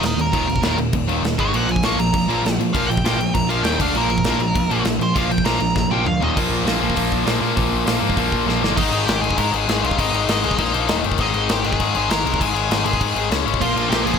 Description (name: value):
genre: punk rock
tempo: 199 BPM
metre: 4/4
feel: straight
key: unclear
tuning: A4 = 440 Hz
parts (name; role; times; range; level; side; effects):
- nasal lead guitar with a parked wah; melody; 0.0-6.4, 8.8-14.2 s; Eb4 to Db6; -23 LUFS; right 2 dB; overdrive
- distorted electric guitar; riff; 0.0-14.2 s; Eb2 to D4; -22 LUFS; left 12 dB; overdrive
- sludgy distorted guitar; riff; 0.0-8.8, 13.6-14.2 s; Eb2 to D4; -23 LUFS; right 14 dB; overdrive
- overdriven picked electric bass; bass; 0.0-14.2 s; Eb1 to Bb2; -25 LUFS; equal; none
- big rock drum kit; drums; 0.0-14.2 s; crash cymbal, hi-hat, kick drum, snare drum, toms; -23 LUFS; equal; none
room: light reverb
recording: none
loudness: -17 LUFS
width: side -6 dB against mid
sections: 0.0-6.4 A section; 6.4-8.8 B section; 8.8-14.2 C section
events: lead electric guitar solo 0.0-6.4; drum fill 5.8-6.4, 8.5-8.8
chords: 0.0 Eb5; 1.4 Ab5; 1.5 Bb5; 3.6 Eb5; 3.8 D5; 3.9 Bb5; 6.2 Eb5; 6.4 Bb5; 8.8 Ab; 10.6 Bb5; 10.9 Eb5; 11.2 Ab5; 13.3 Db5; 13.6 Bb5